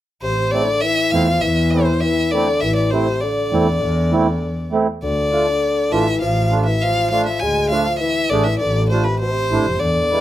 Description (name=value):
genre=klezmer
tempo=100 BPM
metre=4/4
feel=straight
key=A harmonic minor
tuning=A4 = 435 Hz
part: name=clear violin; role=melody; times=0.2-10.2 s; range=B4 to G#5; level=-20 LUFS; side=left 1 dB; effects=none
part: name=mellow bassoon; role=second line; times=0.2-10.2 s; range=C3 to G#3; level=-22 LUFS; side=left 2 dB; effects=none
part: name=warm double bass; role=bass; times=0.2-10.0 s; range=F1 to E2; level=-21 LUFS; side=equal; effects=none
part: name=mellow accordion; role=accompaniment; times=0.5-10.2 s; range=G#3 to G#4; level=-20 LUFS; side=right 4 dB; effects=none
room=moderate studio reverb, RT60 0.6 s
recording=none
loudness=-15 LUFS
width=side -13 dB against mid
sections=0.2-10.2 A section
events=none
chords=0.2 Am; 5.0 Dm